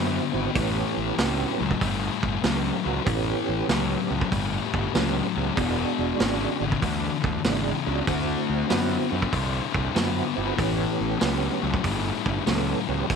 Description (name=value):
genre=blues rock power trio and southern rock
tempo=96 BPM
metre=4/4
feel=swing 66% on 8ths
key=A mixolydian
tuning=A4 = 438 Hz
part: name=tonewheel organ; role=sustained chords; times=0.0-13.2 s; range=G#3 to A4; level=-31 LUFS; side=right 18 dB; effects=slow rotary speaker, chorus vibrato
part: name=thick fuzz guitar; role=riff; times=0.0-13.2 s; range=E2 to C4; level=-26 LUFS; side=left 12 dB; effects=distortion
part: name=fuzz fingered electric bass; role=bass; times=0.0-13.2 s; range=E1 to F#2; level=-29 LUFS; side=right 3 dB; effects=overdrive
part: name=vintage drum kit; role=drums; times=0.6-13.2 s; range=hi-hat, kick drum, snare drum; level=-29 LUFS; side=right 3 dB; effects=none
room=small room ambience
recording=1960s-style stereo with parts hard left and right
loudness=-22 LUFS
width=side -6 dB against mid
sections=0.0-13.2 A section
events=none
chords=0.0 D7; 0.6 A7; 5.6 E7; 8.1 D7; 10.6 A7